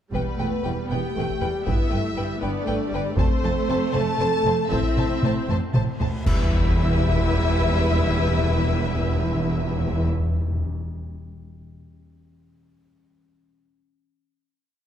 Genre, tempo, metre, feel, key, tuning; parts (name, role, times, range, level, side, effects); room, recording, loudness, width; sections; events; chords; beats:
cinematic, epic orchestral film score; 79 BPM (dotted quarters); 6/8; straight; E phrygian; A4 = 440 Hz
rich symphonic violin section; melody; 0.1-10.1 s; B4 to A5; -31 LUFS; left 3 dB
rich chamber violin section; second line; 0.1-10.1 s; B4 to A5; -31 LUFS; left 4 dB
rich symphonic viola section; accompaniment; 0.1-10.0 s; G3 to E4; -30 LUFS; right 2 dB
mellow French horn section; sustained chords; 0.1-10.1 s; B3 to A4; -29 LUFS; left 2 dB
rich studio cello section; bass; 0.1-10.1 s; E2 to A2; -29 LUFS; right 1 dB
rich symphonic double bass section; bass; 0.1-10.1 s; E1 to A1; -28 LUFS; right 2 dB
taiko ensemble; drums; 0.1-6.4 s; -25 LUFS; equal
timpani; percussion; 0.1-0.9, 6.2-10.8 s; E2; -26 LUFS; left 1 dB
cymbal swell, clash cymbals and concert bass drum; percussion; 3.2-7.2 s; -28 LUFS; equal
reverse cymbal and sub drop; sound effects; 6.2-7.8 s; -33 LUFS; equal
moderate scoring stage reverb, RT60 1.8 s; dark, warm production; -20 LUFS; side -10 dB against mid
0.1-6.3 theme; 6.3-9.3 final chord
drum fill 5.5-6.3; reverse cymbal 6.2; band accent 6.3-6.8; impact 6.3-7.8
0.1 Em; 1.7 G; 3.2 F; 4.7 Am; 6.3 Em
| 0.13 0.91 | 1.67 2.42 | 3.17 3.94 | 4.71 5.49 | 6.26 7.02 | 7.78 8.54